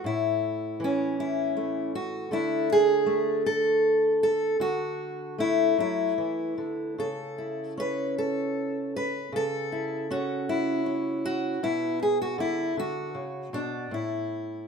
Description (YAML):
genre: folk, solo fingerstyle acoustic guitar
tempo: 52 BPM (dotted quarters)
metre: 6/8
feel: rubato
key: A major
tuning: A4 = 440 Hz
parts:
  - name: fingerpicked steel-string acoustic guitar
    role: solo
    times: 0.0-14.7 s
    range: A2 to B4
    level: -25 LUFS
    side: equal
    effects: none
room: light reverb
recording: minimal, uncompressed stereo recording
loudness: -25 LUFS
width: side -6 dB against mid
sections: 0.0-14.7 A section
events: none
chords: 0.0 A; 2.3 D; 7.0 A/C#; 11.6 Bm; 13.9 A5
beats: | 0.04 1.18 | 2.31 3.45 | 4.60 5.78 | 6.98 8.16 | 9.33 10.48 | 11.62 12.76 | 13.90